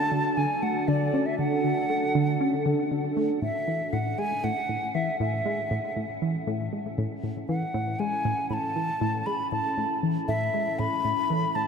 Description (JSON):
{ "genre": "ambient, sequencer-driven space music", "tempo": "118 BPM", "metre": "4/4", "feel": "straight", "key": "A major", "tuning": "A4 = 440 Hz", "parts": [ { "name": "hollow wooden flute", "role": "melody", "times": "0.0-11.7 s", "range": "D5 to B5", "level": "-28 LUFS", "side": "equal", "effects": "ping-pong delay" }, { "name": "sweeping resonant pad", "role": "sustained chords", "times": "0.0-11.7 s", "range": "C#4 to A4", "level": "-31 LUFS", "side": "right 1 dB", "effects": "chorus" }, { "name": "tight sequenced synth", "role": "riff", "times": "0.1-11.6 s", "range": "A2 to C#4", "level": "-28 LUFS", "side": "equal", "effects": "chorus, ping-pong delay" } ], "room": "wet huge ambient reverb, RT60 8.2 s", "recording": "none", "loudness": "-24 LUFS", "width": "side -6 dB against mid", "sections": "0.0-3.4 A section; 3.4-11.7 B section", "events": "fade-in on analog synth pad 3.4-11.7", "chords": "0.0 D; 3.4 A" }